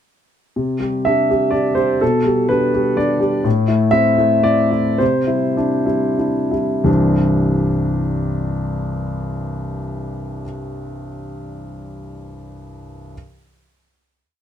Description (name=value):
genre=neoclassical minimalist piano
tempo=88-126 BPM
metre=3/4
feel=rubato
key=C major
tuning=A4 = 440 Hz
part: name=dark grand piano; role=solo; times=0.6-13.2 s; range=C2 to E5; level=-16 LUFS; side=equal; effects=none
room=light reverb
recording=close, detailed microphones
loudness=-15 LUFS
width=side -9 dB against mid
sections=0.6-6.9 A section; 6.9-10.9 final chord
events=slowing down 2.7-6.9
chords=0.6 Cadd9; 2.0 Gadd9/B; 3.4 Am; 5.0 Cadd9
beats=| 0.57 1.06 1.54 | 2.01 2.49 2.97 | 3.45 3.94 4.46 | 5.00 5.58 6.20 | 6.87 7.54 8.21 | 8.89 9.56 10.23